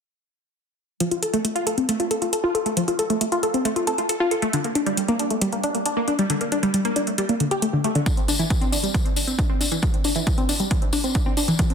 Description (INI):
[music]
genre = uplifting trance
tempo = 136 BPM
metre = 4/4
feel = straight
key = F major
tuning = A4 = 442 Hz
[part]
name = wide unison pluck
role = arpeggios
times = 1.0-11.7 s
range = D3 to A4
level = -22 LUFS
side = left 1 dB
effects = sidechain pumping, dub echo
[part]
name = electronic hi-hat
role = drums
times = 1.0-11.7 s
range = none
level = -29 LUFS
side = right 1 dB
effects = overdrive, sidechain pumping on hats
[part]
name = electronic kick drum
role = drums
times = 8.1-11.7 s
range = none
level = -22 LUFS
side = right 1 dB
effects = overdrive
[part]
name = tambourine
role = percussion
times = 8.1-11.7 s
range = none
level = -30 LUFS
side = left 4 dB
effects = none
[sound]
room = moderate digital room reverb, RT60 1.0 s, digital ambience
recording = dense, heavily limited modern master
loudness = -20 LUFS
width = side -7 dB against mid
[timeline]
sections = 1.0-11.7 A section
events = none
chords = none